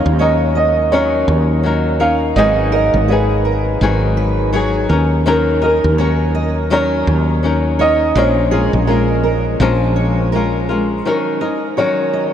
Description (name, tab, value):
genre	acoustic pop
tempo	83 BPM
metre	4/4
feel	swing 60% on 16ths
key	Eb minor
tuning	A4 = 441 Hz
part	dark upright piano	melody	0.0-12.3 s	Bb4 to F5	-18 LUFS	right 2 dB	ping-pong delay
part	flamenco guitar	accompaniment	0.0-12.3 s	Ab2 to Bb4	-18 LUFS	left 4 dB	none
part	fingerpicked steel-string acoustic guitar	arpeggios	0.0-12.3 s	Ab4 to Eb5	-25 LUFS	right 5 dB	analog chorus
part	woody fretless electric bass	bass	0.1-11.0 s	Ab1 to Eb2	-17 LUFS	right 1 dB	none
room	wet huge ambient reverb, RT60 8.7 s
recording	dreamy mix soaked in reverb, cassette tape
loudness	-13 LUFS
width	side -9 dB against mid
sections	0.0-11.1 A section; 11.1-12.3 B section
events	none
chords	0.0 Ebm7; 2.4 Abm7; 4.9 Ebm7; 8.2 Bbm7; 11.1 Ebm7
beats	0.20 0.93 1.65 | 2.37 3.10 3.82 4.54 | 5.26 5.99 6.71 7.43 | 8.16 8.88 9.61 10.33 | 11.05 11.78